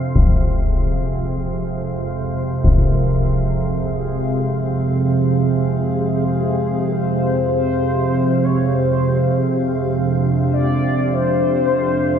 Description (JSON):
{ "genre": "dark ambient drone", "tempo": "49 BPM", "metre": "4/4", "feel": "straight", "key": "F minor", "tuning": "A4 = 439 Hz", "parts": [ { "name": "dark analog pad", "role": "sustained chords", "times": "0.0-12.2 s", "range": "Ab3 to F5", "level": "-26 LUFS", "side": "equal", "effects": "chorus" }, { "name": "organ-like drone", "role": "drone", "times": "0.0-12.2 s", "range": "F2 to C3", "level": "-18 LUFS", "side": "right 2 dB", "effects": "ensemble chorus, built-in reverb" }, { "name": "mellow horn-like synth lead", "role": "melody", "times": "0.1-12.2 s", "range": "Ab4 to E5", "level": "-24 LUFS", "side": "left 4 dB", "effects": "lush chorus, ping-pong delay" }, { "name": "concert bass drum", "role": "percussion", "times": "0.2-2.9 s", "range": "none", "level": "-19 LUFS", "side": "left 1 dB", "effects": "low-pass filter on kick" } ], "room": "moderate cathedral reverb, RT60 4.9 s", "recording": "none", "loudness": "-16 LUFS", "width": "side -8 dB against mid", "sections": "0.2-12.2 A section", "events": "fade-in on analog synth pad 0.2-12.2; fade-in on soft synth lead 0.2-12.2", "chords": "0.2 Fm; 9.9 Dm" }